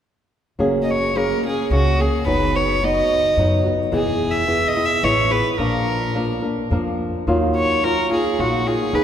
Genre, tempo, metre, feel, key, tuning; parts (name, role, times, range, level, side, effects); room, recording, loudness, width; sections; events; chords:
mexican folk, mariachi; 108 BPM; 3/4; straight; F# major; A4 = 440 Hz
flamenco guitar; accompaniment; 0.6-9.0 s; A#2 to A#4; -20 LUFS; equal
upright bass; bass; 0.6-9.0 s; E1 to F#2; -24 LUFS; equal
rich violin; melody; 0.8-9.0 s; F#4 to E5; -20 LUFS; equal
wet church reverb, RT60 3.3 s; recorded in a church or concert hall; -17 LUFS; side -9 dB against mid
0.6-9.0 A section
0.6 F#add9; 2.3 B/F#; 3.9 E; 5.6 A#; 7.3 D#madd9